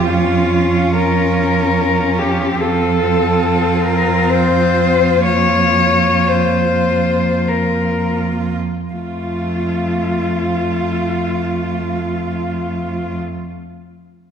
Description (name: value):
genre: classical, lyrical piece for cello ensemble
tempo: 39-75 BPM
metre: 3/4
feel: rubato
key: F major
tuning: A4 = 439 Hz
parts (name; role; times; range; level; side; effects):
- rich cello; melody; 0.0-13.2 s; F4 to Db5; -17 LUFS; left 4 dB; none
- rich cello; second line; 0.0-13.2 s; F4; -24 LUFS; right 5 dB; none
- rich cello; accompaniment; 0.0-13.2 s; A3 to Db4; -22 LUFS; left 3 dB; none
- rich cello; bass; 0.0-13.2 s; F2; -19 LUFS; right 3 dB; none
room: wet concert hall reverb, RT60 1.8 s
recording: none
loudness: -14 LUFS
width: side -7 dB against mid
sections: 0.0-8.9 A section; 8.9-12.8 B section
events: slowing down 1.4-8.9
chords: 0.1 Bbm/F; 2.6 F; 5.2 Bbm/F; 8.9 F